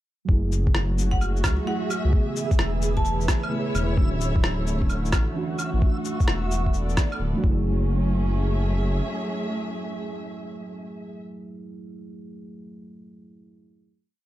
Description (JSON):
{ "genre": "future garage", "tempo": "130 BPM", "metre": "4/4", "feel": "swing 66% on 16ths", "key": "F# minor", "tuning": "A4 = 440 Hz", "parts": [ { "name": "muted felt-like synth keys", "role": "accompaniment", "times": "0.2-13.9 s", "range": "C#3 to G#4", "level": "-32 LUFS", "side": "right 2 dB", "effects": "chorus, vintage 12-bit sampler grit, sidechain pumping, ping-pong delay" }, { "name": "dark chamber string section", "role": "sustained chords", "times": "0.3-11.2 s", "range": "D3 to E5", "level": "-32 LUFS", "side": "equal", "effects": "sidechain pumping" }, { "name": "dark detuned saw bass", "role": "bass", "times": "0.3-9.0 s", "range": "D1 to C#2", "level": "-24 LUFS", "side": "equal", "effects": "sidechain pumping" }, { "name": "electronic kick drum", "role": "drums", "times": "0.3-7.6 s", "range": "none", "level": "-22 LUFS", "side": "equal", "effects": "overdrive" }, { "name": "backwards swelling texture", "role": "texture", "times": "2.0-7.7 s", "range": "E5", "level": "-40 LUFS", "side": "right 1 dB", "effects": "built-in reverb" }, { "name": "electronic shaker, rim click and claves", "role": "drums", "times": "0.5-7.2 s", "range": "none", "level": "-29 LUFS", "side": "equal", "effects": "overdrive" }, { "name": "marimba with hard mallets", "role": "melody", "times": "1.1-3.1 s", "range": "F#5 to A5", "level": "-33 LUFS", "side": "right 1 dB", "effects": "ping-pong delay" } ], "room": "little or no reverb", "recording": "dark, warm production", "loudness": "-22 LUFS", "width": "side -14 dB against mid", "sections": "0.3-7.7 groove; 7.7-11.4 final chord", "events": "none", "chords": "0.3 F#m9; 2.1 Amaj9/E; 4.0 Dmaj9; 5.8 E9sus4; 7.4 F#m9", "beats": "| 0.29 0.75 1.21 1.67 | 2.13 2.59 3.06 3.52 | 3.98 4.44 4.90 5.36 | 5.83 6.29 6.75 7.21 | 7.67 8.13 8.59 9.06 | 9.52 9.98 10.44 10.90" }